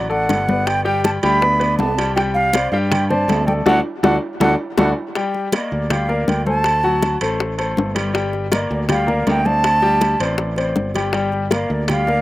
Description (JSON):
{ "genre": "latin, salsa", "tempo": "160 BPM", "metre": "4/4", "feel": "straight", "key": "G minor", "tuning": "A4 = 442 Hz", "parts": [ { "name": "mellow silver concert flute", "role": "melody", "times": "0.0-12.2 s", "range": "D5 to B5", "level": "-19 LUFS", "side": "right 1 dB", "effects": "slapback echo" }, { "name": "clear baby grand piano", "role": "accompaniment", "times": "0.0-12.2 s", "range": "F#3 to G5", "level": "-21 LUFS", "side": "left 2 dB", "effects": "none" }, { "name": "modern bright fingered electric bass", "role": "bass", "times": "0.0-12.2 s", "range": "G1 to G2", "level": "-22 LUFS", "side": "right 1 dB", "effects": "none" }, { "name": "bongos", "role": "percussion", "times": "0.1-12.2 s", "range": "none", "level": "-23 LUFS", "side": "left 5 dB", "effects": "slapback echo" }, { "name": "congas", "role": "percussion", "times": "0.1-12.2 s", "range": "none", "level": "-23 LUFS", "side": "left 1 dB", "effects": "none" }, { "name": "timbales", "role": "percussion", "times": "0.3-12.1 s", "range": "none", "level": "-28 LUFS", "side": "right 6 dB", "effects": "slapback echo" } ], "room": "little or no reverb", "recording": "recorded outdoors, with no room sound", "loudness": "-16 LUFS", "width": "side -16 dB against mid", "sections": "0.0-5.2 A section; 5.2-12.2 B section", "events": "band accent 3.7-5.2; drum fill 4.2-5.2", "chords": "0.0 D; 0.7 G; 2.2 Csus2; 3.7 D; 5.2 Gm7; 6.7 D7; 8.2 Gm7; 9.6 D7sus4; 11.1 Gm7" }